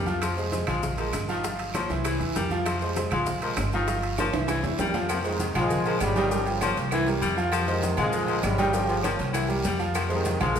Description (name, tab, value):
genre	latin, salsa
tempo	197 BPM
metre	4/4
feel	straight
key	F minor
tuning	A4 = 442 Hz
part	clear baritone saxophone	second line	0.0-10.6 s	Eb3 to Ab3	-31 LUFS	left 4 dB	none
part	bright baby grand piano	accompaniment	0.0-10.6 s	E3 to G5	-28 LUFS	right 2 dB	none
part	upright bass	bass	0.0-10.6 s	G1 to F2	-30 LUFS	equal	none
part	bongos and cowbell	percussion	0.1-10.6 s	none	-37 LUFS	left 4 dB	none
part	congas	percussion	0.1-10.6 s	none	-35 LUFS	left 1 dB	none
part	guiro	percussion	0.1-10.6 s	none	-41 LUFS	right 3 dB	none
part	maracas	percussion	0.1-10.6 s	none	-42 LUFS	left 7 dB	none
part	claves	percussion	0.2-10.6 s	none	-41 LUFS	right 4 dB	none
part	timbales and agogo bells	percussion	0.2-10.6 s	none	-35 LUFS	right 3 dB	none
part	bright trombone section	melody	5.1-10.6 s	C3 to Ab3	-30 LUFS	equal	none
room	wet recital hall reverb, RT60 1.8 s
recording	recorded in a church or concert hall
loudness	-23 LUFS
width	side -8 dB against mid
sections	0.0-5.1 A section; 5.1-10.6 B section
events	drum fill 4.2-5.1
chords	0.2 Fm; 0.8 Bb5; 1.4 Gm7b5; 2.1 C7; 2.7 Fm; 3.3 Bb5; 3.9 Gm7b5; 4.5 C7; 5.1 Fm7; 5.7 Bbm7; 6.3 Gm7b5; 6.9 C7; 7.5 Fm7; 8.1 Bbm7; 8.7 Gm7b5; 9.3 C7; 10.0 Fm7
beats	| 0.22 0.53 0.83 1.14 | 1.44 1.75 2.05 2.35 | 2.66 2.96 3.27 3.57 | 3.88 4.18 4.49 4.79 | 5.09 5.40 5.70 6.01 | 6.31 6.61 6.92 7.22 | 7.53 7.83 8.13 8.44 | 8.74 9.04 9.35 9.65 | 9.95 10.26 10.56